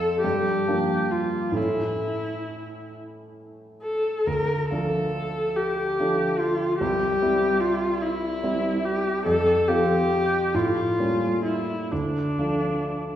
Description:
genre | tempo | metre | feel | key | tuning
classical, romantic duo for viola and grand piano | 42-50 BPM (dotted quarters) | 6/8 | rubato | D minor | A4 = 438 Hz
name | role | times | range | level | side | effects
rich viola | melody | 0.0-13.2 s | D4 to Bb4 | -24 LUFS | left 1 dB | none
clear grand piano | accompaniment | 0.0-13.2 s | C2 to F4 | -27 LUFS | right 1 dB | none
room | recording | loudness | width
wet recital hall reverb, RT60 1.7 s | recorded in a church or concert hall | -22 LUFS | side -11 dB against mid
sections
0.0-13.2 A section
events
none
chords
0.2 Gm7; 1.6 A; 4.3 Dm; 6.8 C; 9.3 F5; 10.5 A7b9; 11.9 Dm

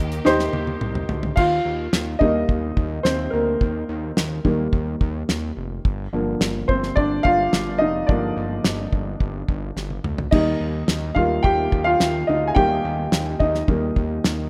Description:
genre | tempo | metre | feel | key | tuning
piano-driven pop | 107 BPM | 4/4 | straight | unclear | A4 = 440 Hz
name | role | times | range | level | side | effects
clear upright piano | accompaniment | 0.0-14.5 s | D3 to Ab5 | -24 LUFS | equal | none
clear symphonic string section | sustained chords | 0.0-1.4 s | Eb3 to G4 | -38 LUFS | equal | none
fat analog bass | bass | 0.0-14.5 s | F1 to Eb2 | -30 LUFS | equal | none
damped 70s drum kit | drums | 0.1-14.4 s | crash cymbal, hi-hat, kick drum, snare drum, toms | -25 LUFS | equal | none
room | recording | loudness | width
light reverb, small room ambience | rough home demo mix | -22 LUFS | mono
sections
0.0-1.4 A section; 1.4-14.5 B section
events
drum fill 0.3-1.4, 9.8-10.3; upright piano solo 1.4-14.5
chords
0.0 Eb; 1.4 Gm7; 10.3 Eb

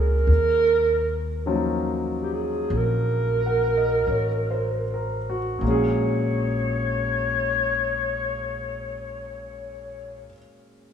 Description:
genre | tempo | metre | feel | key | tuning
jazz ballad | 37-54 BPM | 4/4 | swing 69% on 8ths | Bb minor | A4 = 440 Hz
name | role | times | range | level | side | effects
breathy clarinet | melody | 0.0-10.3 s | G4 to Db5 | -24 LUFS | right 1 dB | none
clear grand piano | accompaniment | 0.0-10.9 s | Bb2 to Gb5 | -28 LUFS | left 1 dB | none
upright bass | bass | 0.0-10.2 s | A1 to Eb2 | -26 LUFS | equal | none
room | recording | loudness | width
wet echo chamber reverb, RT60 2.1 s | heard from further back in the room, small room ambience | -21 LUFS | side -8 dB against mid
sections
0.3-5.6 A section; 5.6-10.9 B section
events
slowing down 0.0-5.6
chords
0.3 Ebm7; 5.6 Bbm7

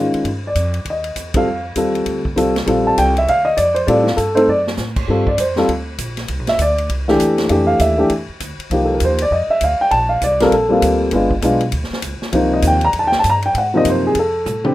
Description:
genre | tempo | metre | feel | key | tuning
jazz piano trio | 199 BPM | 4/4 | swing 62% on 8ths | Bb major, G minor from 5.1 s | A4 = 441 Hz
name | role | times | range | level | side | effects
dark upright piano | melody | 0.0-14.7 s | C3 to Bb5 | -14 LUFS | equal | none
upright bass | bass | 0.0-14.7 s | G1 to A2 | -22 LUFS | equal | none
swinging big-band drum kit | drums | 0.1-14.7 s | crash cymbal, hi-hat, kick drum, ride cymbal, snare drum, toms | -26 LUFS | equal | none
room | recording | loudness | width
light reverb | rough home demo mix | -14 LUFS | side -16 dB against mid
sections
0.0-5.1 A section; 5.1-14.7 B section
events
band accent 1.3; drum fill 4.5-4.8, 14.5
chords
0.3 Cmadd9 (rootless); 1.5 F7; 2.7 Bbmaj9; 3.9 Am7; 4.5 Gbm; 5.1 Gm7; 6.3 C; 7.5 Fmaj7; 8.7 Cm7; 9.3 Dm; 9.9 Bbmaj9; 11.1 G7b9; 12.3 Cm7; 13.5 Ab9; 14.2 F

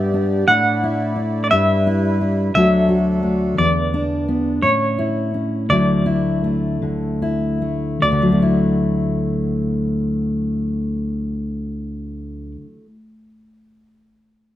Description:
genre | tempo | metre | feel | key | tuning
acoustic folk duo or small band | 48-58 BPM (dotted quarters) | 6/8 | straight | D major | A4 = 436 Hz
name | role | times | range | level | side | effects
semi-hollow electric guitar | melody | 0.0-12.5 s | C#5 to F#5 | -19 LUFS | equal | tremolo, plate reverb
fingerpicked steel-string acoustic guitar | accompaniment | 0.0-13.0 s | D2 to G4 | -18 LUFS | left 1 dB | none
accordion | sustained chords | 0.0-3.6 s | F#3 to D5 | -27 LUFS | right 3 dB | none
room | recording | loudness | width
moderate small room reverb, RT60 0.6 s | dark, warm production | -16 LUFS | side -13 dB against mid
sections
0.0-8.0 A section; 8.0-13.0 B section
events
slowing down 3.6-8.0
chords
0.5 Dsus2/A; 1.5 G6; 2.5 D; 3.6 E5; 4.6 A; 5.7 Dadd9

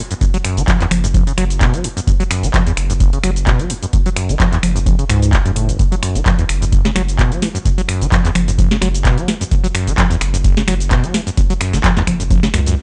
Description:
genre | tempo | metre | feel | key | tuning
acid house | 129 BPM | 4/4 | swing 55% on 16ths | unclear | A4 = 440 Hz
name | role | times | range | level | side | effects
liquid acid bass | riff | 0.0-12.8 s | F#1 to F#3 | -22 LUFS | equal | chorus, tube saturation, cassette tape
booming analog drum machine | drums | 0.1-12.8 s | cabasa, congas, finger snaps, handclaps, hi-hat, snare drum | -22 LUFS | equal | studio ambience
round analog bass | bass | 0.2-12.8 s | F#1 to C#2 | -22 LUFS | equal | sidechain pumping
electronic kick drum | drums | 0.2-12.4 s | none | -18 LUFS | equal | studio ambience
room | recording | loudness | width
digital ambience | dry, gritty hardware recording, transformer saturation, nothing above 10.9 kHz | -15 LUFS | mono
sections
0.0-12.8 A section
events
none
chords
0.0 F#5

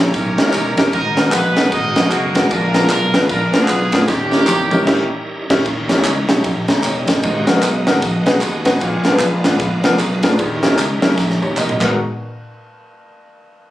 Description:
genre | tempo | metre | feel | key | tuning
uptempo gospel | 152 BPM | 4/4 | swing 60% on 8ths | unclear | A4 = 441 Hz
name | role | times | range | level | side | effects
bright horn section | melody | 0.0-5.2 s | A#3 to D#5 | -20 LUFS | equal | none
warm concert grand piano | accompaniment | 0.0-12.0 s | G#1 to A#5 | -18 LUFS | equal | none
bright tonewheel organ | sustained chords | 0.0-12.0 s | B2 to G#5 | -24 LUFS | right 1 dB | slow rotary speaker, chorus vibrato
vintage slap bass | bass | 0.0-12.0 s | E1 to E2 | -21 LUFS | equal | none
crisp fusion drum kit | drums | 0.1-11.9 s | crash cymbal, kick drum, ride cymbal, snare drum, toms | -19 LUFS | equal | none
tambourine and handclaps | percussion | 0.1-12.0 s | none | -26 LUFS | equal | none
room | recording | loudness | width
moderate large studio reverb, RT60 0.8 s | recorded on a phone in the room, club ambience, compression | -13 LUFS | side -14 dB against mid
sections
0.0-5.7 A section; 5.7-12.0 B section; 12.0-13.5 C section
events
drum fill 4.1-5.7, 11.2-12.0; band accent 4.9-5.7; tonewheel organ fill 7.6-8.8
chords
0.0 D#7b9; 0.9 G#m9; 2.5 A#7b9; 4.1 D#7b9; 7.2 G#m9; 8.8 A#7b9; 10.4 D#7b9; 11.8 G#m9; 12.0 N.C.

